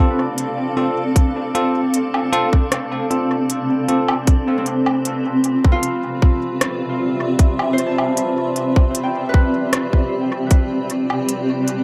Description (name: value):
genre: ambient dub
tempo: 77 BPM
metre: 4/4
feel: straight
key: D dorian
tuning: A4 = 440 Hz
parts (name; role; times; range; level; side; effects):
- granular cloud pad; sustained chords; 0.0-11.8 s; C4 to F5; -23 LUFS; equal; built-in reverb
- Celtic harp; arpeggios; 0.0-11.8 s; C4 to A5; -31 LUFS; equal; dub echo
- bell-like tine electric piano; stabs; 0.0-4.1 s; C4 to A4; -25 LUFS; equal; dub echo
- drifting glass-harmonics texture; texture; 0.0-11.8 s; C4 to D5; -31 LUFS; equal; chorus, built-in reverb
- organic electronic drum kit; drums; 0.4-11.8 s; hi-hat, rim click, woodblock; -27 LUFS; equal; overdrive, dub echo
- electronic kick drum; drums; 1.2-10.7 s; none; -16 LUFS; equal; overdrive
room: moderate spring reverb, RT60 2.0 s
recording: none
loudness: -19 LUFS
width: mono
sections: 0.0-4.3 A section; 4.3-11.8 B section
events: kick drops out 2.7-4.3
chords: 0.0 G9sus4; 4.3 Dm11; 10.5 G7sus4